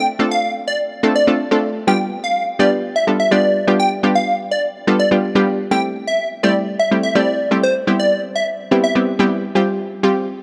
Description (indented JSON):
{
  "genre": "pop",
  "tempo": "125 BPM",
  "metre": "4/4",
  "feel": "straight",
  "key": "unclear",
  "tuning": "A4 = 441 Hz",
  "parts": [
    { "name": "plucky unison lead", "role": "melody", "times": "0.0-8.9 s", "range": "C5 to G5", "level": "-21 LUFS", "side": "equal", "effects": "dub echo" },
    { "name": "analog pluck", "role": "accompaniment", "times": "0.0-10.4 s", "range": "G3 to A4", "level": "-19 LUFS", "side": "equal", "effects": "chorus" }
  ],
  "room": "moderate plate reverb, RT60 3.1 s",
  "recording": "dark, warm production",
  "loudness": "-17 LUFS",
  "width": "mono",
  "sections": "0.0-9.6 A section",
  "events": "none",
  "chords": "0.0 Dm7; 1.9 G7; 5.7 Am7; 7.6 Cmaj7; 9.6 Fsus2"
}